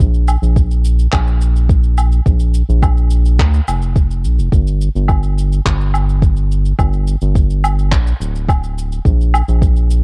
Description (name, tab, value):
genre	sunset chillout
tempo	106 BPM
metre	4/4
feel	straight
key	unclear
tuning	A4 = 441 Hz
part	round analog bass	bass	0.0-10.0 s	D1 to D2	-13 LUFS	equal	none
part	cabasa, woodblock and handclaps	drums	0.0-10.0 s	none	-22 LUFS	equal	cassette tape
part	electronic kick drum	drums	0.0-9.7 s	none	-13 LUFS	equal	overdrive, cassette tape
room	little or no reverb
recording	home recording on cassette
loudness	-11 LUFS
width	side -38 dB against mid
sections	0.0-10.0 A section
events	none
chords	none